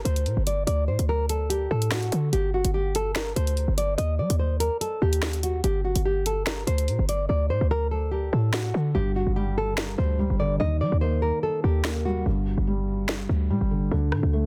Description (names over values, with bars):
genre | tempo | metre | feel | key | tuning
hip hop, drill | 145 BPM | 4/4 | half-time | G harmonic minor | A4 = 438 Hz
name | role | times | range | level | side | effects
nylon-string guitar | melody | 0.0-12.2 s | F#4 to Eb5 | -30 LUFS | equal | tape echo
short 808-style bass | bass | 0.0-14.5 s | G1 to G3 | -27 LUFS | equal | none
drill drum kit | drums | 0.1-14.2 s | finger snaps, hi-hat, rim click, snare drum | -32 LUFS | equal | none
felt-muted upright piano | accompaniment | 8.9-14.5 s | G2 to Bb3 | -30 LUFS | equal | none
room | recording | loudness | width
small room ambience | dense, heavily limited modern master | -25 LUFS | mono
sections
0.0-14.5 A section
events
hi-hats muted 7.3-8.9, 8.9-14.5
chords
0.0 Gm; 0.7 D; 2.3 G5; 4.0 Eb; 5.6 G5; 7.3 D; 8.9 G5; 10.6 Eb; 12.3 G5; 13.9 D5